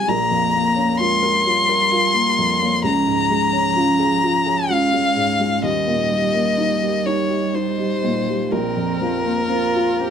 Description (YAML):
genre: neoclassical piano and strings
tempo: 64 BPM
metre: 3/4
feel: uneven beats, rubato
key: Bb dorian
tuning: A4 = 442 Hz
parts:
  - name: dark violin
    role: melody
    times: 0.0-10.1 s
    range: Bb4 to C6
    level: -19 LUFS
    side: left 3 dB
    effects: none
  - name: dark cello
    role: second line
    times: 0.0-10.1 s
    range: F3 to G4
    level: -26 LUFS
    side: right 10 dB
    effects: none
  - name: dark baby grand piano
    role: accompaniment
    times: 0.0-10.1 s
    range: Bb1 to Bb4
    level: -22 LUFS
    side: left 2 dB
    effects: none
  - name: marimba with soft mallets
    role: arpeggios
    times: 0.1-10.1 s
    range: Db4 to Bb5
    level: -26 LUFS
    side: right 4 dB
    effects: slapback echo
room: light reverb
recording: none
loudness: -16 LUFS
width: side -8 dB against mid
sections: 0.0-10.1 A section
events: none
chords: 0.1 Bbmadd9; 2.8 Db; 5.6 Eb; 8.5 Bbsus2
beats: | 0.09 1.00 1.92 | 2.85 3.77 4.70 | 5.64 6.57 7.53 | 8.52 9.49